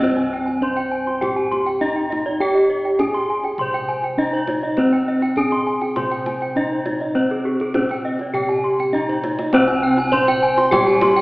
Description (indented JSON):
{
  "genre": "Balinese gamelan",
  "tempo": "101 BPM",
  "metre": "4/4",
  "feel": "straight",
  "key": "C pelog",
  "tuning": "A4 = 440 Hz",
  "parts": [
    { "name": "gamelan-type bronze metallophone", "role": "melody", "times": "0.0-11.2 s", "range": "C4 to C5", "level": "-20 LUFS", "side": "equal", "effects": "none" },
    { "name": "gamelan-type bronze metallophone", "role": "accompaniment", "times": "0.0, 9.5-11.2 s", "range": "C3 to G3", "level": "-31 LUFS", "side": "equal", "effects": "none" },
    { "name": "gamelan-type bronze metallophone", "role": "arpeggios", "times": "0.0-11.2 s", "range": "G4 to C6", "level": "-24 LUFS", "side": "left 1 dB", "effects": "none" },
    { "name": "gamelan-type bronze metallophone", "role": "arpeggios", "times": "0.0-11.2 s", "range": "Ab4 to C6", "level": "-26 LUFS", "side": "right 1 dB", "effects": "none" },
    { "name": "gamelan-type bossed gongs", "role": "bass", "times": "0.0-11.2 s", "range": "C2 to G4", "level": "-23 LUFS", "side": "equal", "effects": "none" },
    { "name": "kendang", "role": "percussion", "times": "0.0-11.2 s", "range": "none", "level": "-30 LUFS", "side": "equal", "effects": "none" }
  ],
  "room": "wet concert hall reverb, RT60 2.0 s",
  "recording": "heard from further back in the room, AM radio sound",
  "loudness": "-17 LUFS",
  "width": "side -22 dB against mid",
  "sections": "0.0-11.2 A section",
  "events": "drum fill 8.8-9.5",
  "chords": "none"
}